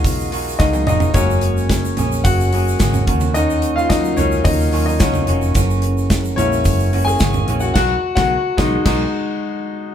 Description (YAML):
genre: piano-driven pop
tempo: 109 BPM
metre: 4/4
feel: straight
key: unclear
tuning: A4 = 437 Hz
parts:
  - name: clear grand piano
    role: accompaniment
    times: 0.0-9.9 s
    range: F#3 to G#5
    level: -20 LUFS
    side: left 3 dB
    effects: none
  - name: clean electric guitar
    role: riff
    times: 0.0-9.1 s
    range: F#2 to G#4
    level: -23 LUFS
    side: right 3 dB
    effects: none
  - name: vintage muted fingered electric bass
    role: bass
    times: 0.0-9.0 s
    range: E#1 to D#2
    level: -20 LUFS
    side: equal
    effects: none
  - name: modern studio drum kit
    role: drums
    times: 0.0-9.0 s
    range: crash cymbal, hi-hat, kick drum, snare drum, toms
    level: -20 LUFS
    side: equal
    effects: none
  - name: egg shaker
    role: percussion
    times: 0.1-7.7 s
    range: none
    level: -33 LUFS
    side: right 4 dB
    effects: none
room: moderate stone room reverb, RT60 1.3 s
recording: band playing live in one room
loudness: -14 LUFS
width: side -9 dB against mid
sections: 0.0-9.9 A section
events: grand piano solo 0.0-9.9; drum fill 0.6-1.2; band accent 7.8-9.9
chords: 0.0 B6; 1.2 F#add9; 3.1 D#m7; 5.6 F#7; 7.8 B6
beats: 0.05 0.60 | 1.15 1.70 2.25 2.80 | 3.35 3.90 4.45 5.00 | 5.55 6.11 6.66 7.21 | 7.76 8.31 8.86 9.41